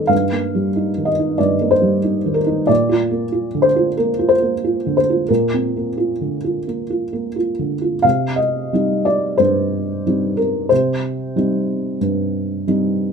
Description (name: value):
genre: neoclassical minimalist piano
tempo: 86-95 BPM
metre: 4/4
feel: rubato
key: unclear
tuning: A4 = 439 Hz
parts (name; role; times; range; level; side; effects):
- felt-muted upright piano; solo; 0.0-13.1 s; G2 to F5; -16 LUFS; equal; none
room: light reverb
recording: minimal, uncompressed stereo recording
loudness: -16 LUFS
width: side -6 dB against mid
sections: 0.0-8.0 A section; 8.0-13.1 B section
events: none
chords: 0.0 Eb/G; 2.7 Bbadd9; 8.0 Cm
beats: | 0.11 0.77 1.42 2.06 | 2.69 3.33 3.97 4.62 | 5.29 5.98 6.67 7.35 | 8.04 8.72 9.38 10.04 | 10.70 11.35 12.01 12.66